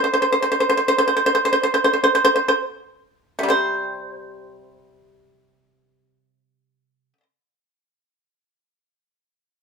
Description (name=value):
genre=chinese traditional, Chinese solo plucked strings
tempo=50-65 BPM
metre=4/4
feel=rubato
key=unclear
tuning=A4 = 439 Hz
part: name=pipa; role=solo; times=0.0-7.2 s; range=C3 to C5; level=-17 LUFS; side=right 1 dB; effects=none
room=light reverb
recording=band playing live in one room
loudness=-16 LUFS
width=side -5 dB against mid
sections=0.0-3.5 A section; 3.5-8.2 B section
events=slowing down 0.0-3.5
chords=none